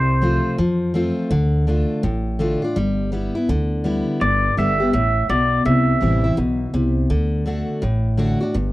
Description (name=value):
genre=honky-tonk and classic country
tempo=166 BPM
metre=4/4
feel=swing 64% on 8ths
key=unclear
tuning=A4 = 442 Hz
part: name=pedal steel guitar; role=melody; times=0.0-0.6, 4.2-6.3 s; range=C5 to E5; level=-20 LUFS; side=right 1 dB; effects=none
part: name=picked steel-string acoustic guitar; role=accompaniment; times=0.0-8.7 s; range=G2 to G4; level=-20 LUFS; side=left 1 dB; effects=none
part: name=upright bass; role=bass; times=0.0-8.7 s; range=G1 to F2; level=-21 LUFS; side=equal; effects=none
room=studio ambience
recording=dry, close 1970s-style studio recording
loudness=-17 LUFS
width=side -18 dB against mid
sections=0.0-8.7 A section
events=none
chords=0.0 F/C; 1.3 Dm; 2.8 G6; 4.2 Gadd9; 5.7 C; 7.1 D